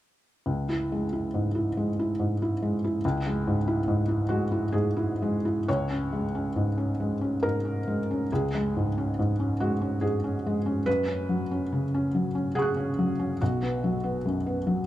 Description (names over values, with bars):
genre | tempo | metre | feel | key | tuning
neoclassical minimalist piano | 70 BPM | 3/4 | uneven beats, rubato | C# dorian | A4 = 441 Hz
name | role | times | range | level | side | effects
felt-muted upright piano | solo | 0.5-14.9 s | B1 to F#6 | -25 LUFS | equal | none
room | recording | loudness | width
light reverb, studio reverb | dry, close 1970s-style studio recording | -25 LUFS | side -14 dB against mid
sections
0.5-5.7 A section; 5.7-14.9 B section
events
none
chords
0.5 C#m; 5.7 C#5; 10.9 F#sus4; 13.4 B5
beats
| 0.47 1.34 2.20 | 3.03 3.86 4.72 | 5.67 6.55 7.42 | 8.30 9.17 10.02 | 10.86 11.71 12.55 | 13.40 14.24